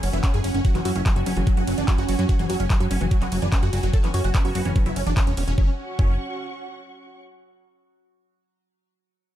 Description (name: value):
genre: psychedelic trance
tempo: 146 BPM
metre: 4/4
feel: straight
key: unclear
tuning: A4 = 440 Hz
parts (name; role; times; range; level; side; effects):
- dense compressed supersaw; melody; 0.0-6.1 s; F#3 to A4; -29 LUFS; equal; phaser, sidechain pumping, tape echo
- overtone-sweeping drone; sustained chords; 0.0-5.6 s; F#3 to F#4; -34 LUFS; right 5 dB; chorus, built-in reverb, phaser, sidechain pumping
- plucky analog bass; bass; 0.0-6.2 s; E1 to F#2; -25 LUFS; equal; none
- big-room dance drum kit; drums; 0.0-5.6 s; handclaps, hi-hat, ride cymbal; -33 LUFS; equal; none
- dark studio string section; texture; 0.0-7.2 s; C#4 to C#6; -35 LUFS; right 1 dB; sidechain pumping
- metallic wobble bass; second line; 0.1-5.0 s; B3 to E4; -40 LUFS; right 5 dB; none
- woody wave-folded pluck; riff; 0.1-6.2 s; E3 to F#4; -31 LUFS; equal; chorus, auto-pan, sidechain pumping, tape echo
- electronic kick drum; drums; 0.2-6.1 s; none; -20 LUFS; equal; overdrive
room: digital ambience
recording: dark, warm production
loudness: -19 LUFS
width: side -12 dB against mid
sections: 0.0-5.6 A section; 5.6-7.2 B section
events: drop 0.0-5.6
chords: 0.0 F#5